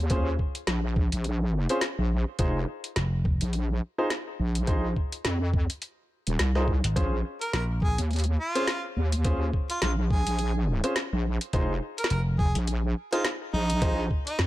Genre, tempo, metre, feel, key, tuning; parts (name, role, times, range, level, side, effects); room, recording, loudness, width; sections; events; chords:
glitch hop; 105 BPM; 4/4; swing 58% on 16ths; A4 = 440 Hz
wobble bass; bass; 0.0-14.5 s; Eb1 to F2; -26 LUFS; equal; chorus, overdrive
warm baby grand piano; stabs; 0.1-14.0 s; Db4 to C5; -31 LUFS; equal; sidechain pumping, ping-pong delay
drum and bass drum kit; drums; 0.1-14.5 s; hi-hat, snare drum; -31 LUFS; equal
electronic kick drum; drums; 0.1-14.2 s; -27 LUFS; equal
vintage slap bass; bass; 3.0-3.4, 6.8-8.0, 12.1-12.5 s; F1 to Bb1; -26 LUFS; equal
warm harmonica; melody; 7.4-14.4 s; Eb4 to Bb4; -33 LUFS; right 1 dB; ping-pong delay
digital ambience; -25 LUFS; side -16 dB against mid
0.0-14.5 A section
0.0 N.C.; 2.4 Fm7; 7.0 N.C.; 11.5 Fm7